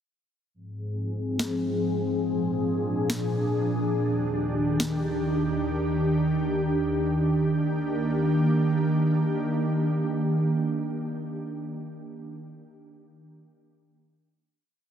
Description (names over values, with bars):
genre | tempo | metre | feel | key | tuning
hip hop, atmospheric cloud-rap | free time | none | none | Eb major | A4 = 441 Hz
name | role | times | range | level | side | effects
ethereal airy pad | sustained chords | 0.7-11.5 s | Eb2 to Ab4 | -24 LUFS | equal | ensemble chorus, built-in reverb, low-pass filter
electronic snare drum | drums | 1.4-4.9 s | none | -30 LUFS | equal | overdrive
room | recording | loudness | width
moderate huge ambient reverb, RT60 4.5 s | dense, heavily limited modern master | -24 LUFS | side -9 dB against mid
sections
0.5-7.3 breakdown; 7.3-10.8 final chord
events
filter sweep on ambient pad 0.5-7.3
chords
0.5 Ab6; 2.2 Bb7; 3.9 Ebmaj7